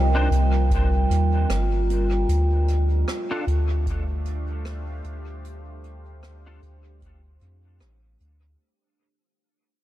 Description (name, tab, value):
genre	ambient dub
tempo	76 BPM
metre	4/4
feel	swing 60% on 16ths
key	unclear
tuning	A4 = 443 Hz
part	deep dark ambient pad	sustained chords	0.0-8.6 s	G3 to F5	-31 LUFS	right 1 dB	chorus, built-in reverb
part	vibraphone with medium mallets	arpeggios	0.0-4.8 s	F4 to G5	-30 LUFS	right 2 dB	tape echo
part	soft dub sub bass	bass	0.0-8.6 s	G1 to F2	-22 LUFS	equal	none
part	semi-hollow electric guitar	stabs	0.1-6.6 s	D4 to C5	-33 LUFS	left 2 dB	ensemble chorus, low-pass filter, dub echo
part	jazz brush drum kit	drums	0.3-8.4 s	hi-hat, rim click	-38 LUFS	right 1 dB	dub echo
part	electronic kick drum	drums	0.7-7.2 s	none	-28 LUFS	equal	none
room	light reverb, small room ambience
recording	none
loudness	-20 LUFS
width	side -14 dB against mid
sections	0.0-8.6 A section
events	fade-out 0.0-8.6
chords	0.0 Cm; 2.3 Dm